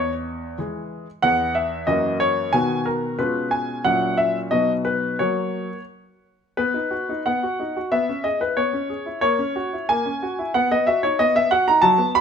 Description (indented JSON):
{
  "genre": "classical-period piano sonatina",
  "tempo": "92 BPM",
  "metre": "2/4",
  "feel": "rubato",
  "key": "B major",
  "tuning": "A4 = 441 Hz",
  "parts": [
    { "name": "clear grand piano", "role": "solo", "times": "0.0-12.2 s", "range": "E2 to B5", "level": "-19 LUFS", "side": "equal", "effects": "none" }
  ],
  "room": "moderate large studio reverb, RT60 1.3 s",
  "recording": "minimal, uncompressed stereo recording",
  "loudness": "-19 LUFS",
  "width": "side -7 dB against mid",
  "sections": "0.0-6.6 A section; 6.6-12.2 B section",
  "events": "none",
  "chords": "0.0 E; 1.9 F#7; 2.5 B; 3.2 C#7/B; 3.8 F#7/A#; 4.5 B; 5.2 F#; 6.6 B; 7.9 C#m7/B; 9.2 F#7/A#; 10.6 B"
}